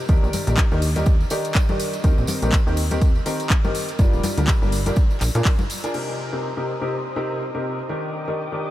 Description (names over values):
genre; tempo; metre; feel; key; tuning
piano house; 123 BPM; 4/4; swing 57% on 16ths; C minor; A4 = 440 Hz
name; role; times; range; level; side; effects
clear grand piano; riff; 0.1-8.7 s; Bb2 to Bb4; -25 LUFS; left 1 dB; lush chorus, sidechain pumping, tape echo
plucky analog bass; bass; 0.1-5.4 s; D1 to Bb2; -22 LUFS; equal; sidechain pumping
electronic kick drum; drums; 0.1-5.6 s; none; -18 LUFS; equal; overdrive
house drum kit; drums; 0.1-6.1 s; crash cymbal, handclaps, hi-hat; -29 LUFS; left 1 dB; overdrive
tambourine and congas; percussion; 0.1-5.9 s; none; -31 LUFS; left 2 dB; none
bright symphonic violin section; sustained chords; 5.9-8.7 s; C5 to Eb6; -34 LUFS; left 1 dB; sidechain pumping, low-pass filter
room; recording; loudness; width
light reverb, small room ambience; none; -19 LUFS; side -14 dB against mid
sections
0.0-5.9 A section; 5.9-8.7 B section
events
filter sweep on violin section 5.9-8.7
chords
0.1 Ebmaj7; 2.0 Cm7; 4.0 Gm7; 5.0 Bb7; 5.9 Cm7; 7.9 Ebmaj7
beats
| 0.09 0.58 1.06 1.55 | 2.04 2.53 3.02 3.50 | 3.99 4.48 4.97 5.45 | 5.94 6.43 6.92 7.41 | 7.89 8.38